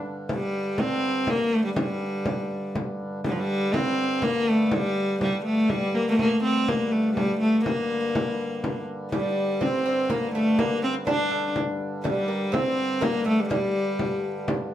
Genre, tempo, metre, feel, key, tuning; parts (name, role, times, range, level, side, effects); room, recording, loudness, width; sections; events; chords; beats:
medieval dance; 123 BPM; 3/4; straight; G minor; A4 = 441 Hz
hand-pumped harmonium; drone; 0.0-14.7 s; G2 to D3; -33 LUFS; equal
frame drum; percussion; 0.1-14.7 s; -29 LUFS; left 1 dB
bright viola da gamba; melody; 0.3-14.4 s; F3 to D4; -24 LUFS; equal
lute; second line; 9.1-14.4 s; G3 to D4; -29 LUFS; right 1 dB
wet studio reverb, RT60 0.6 s; band playing live in one room; -22 LUFS; side -12 dB against mid
0.0-3.2 A section; 3.2-14.7 A section
| 0.29 0.79 1.28 | 1.77 2.26 2.75 | 3.24 3.73 4.23 | 4.72 5.21 5.70 | 6.19 6.68 7.17 | 7.66 8.14 8.63 | 9.12 9.61 10.10 | 10.59 11.07 11.56 | 12.05 12.53 13.02 | 13.51 13.99 14.48